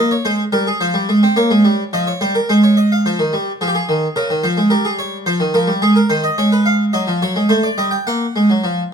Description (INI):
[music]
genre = classical, baroque-style two-part invention for harpsichord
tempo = 108 BPM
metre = 3/4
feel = straight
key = unclear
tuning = A4 = 440 Hz
[part]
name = harpsichord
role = solo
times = 0.0-8.9 s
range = Db3 to G5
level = -13 LUFS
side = right 1 dB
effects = none
[sound]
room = light reverb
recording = close, detailed microphones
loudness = -13 LUFS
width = side -7 dB against mid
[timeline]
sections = 0.0-3.0 A section; 3.0-8.9 B section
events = none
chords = 0.0 Fm (rootless); 2.5 Fm/Ab; 3.0 Fm; 4.2 Bbm7/Db; 4.7 Eb/G; 5.8 Ab; 6.4 Ab5; 7.5 Cm69; 8.1 Ebm (rootless)